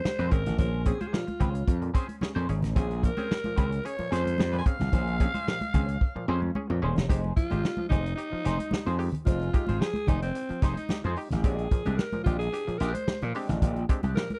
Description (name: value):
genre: funk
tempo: 111 BPM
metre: 4/4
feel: straight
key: F minor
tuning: A4 = 441 Hz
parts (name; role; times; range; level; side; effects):
- raspy alto saxophone; melody; 0.0-14.4 s; C4 to Ab5; -36 LUFS; equal; none
- semi-hollow electric guitar; accompaniment; 0.0-14.3 s; Ab3 to C5; -40 LUFS; equal; wah
- muted clav; stabs; 0.0-14.3 s; Bb2 to Ab4; -40 LUFS; equal; overdrive
- vintage drum kit; drums; 0.1-14.4 s; hi-hat, kick drum, snare drum; -29 LUFS; equal; none
- congas; percussion; 0.1-14.4 s; none; -38 LUFS; equal; none
- gritty slap bass; bass; 0.2-14.1 s; Eb1 to Bb2; -31 LUFS; equal; overdrive, tube saturation
room: studio ambience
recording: dry, close 1970s-style studio recording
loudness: -28 LUFS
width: mono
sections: 0.0-7.1 A section; 7.1-14.4 B section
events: drum fill 6.0-7.1; alto saxophone solo 7.1-14.4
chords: 0.0 Bbm9; 7.1 Fm7; 11.4 Bb13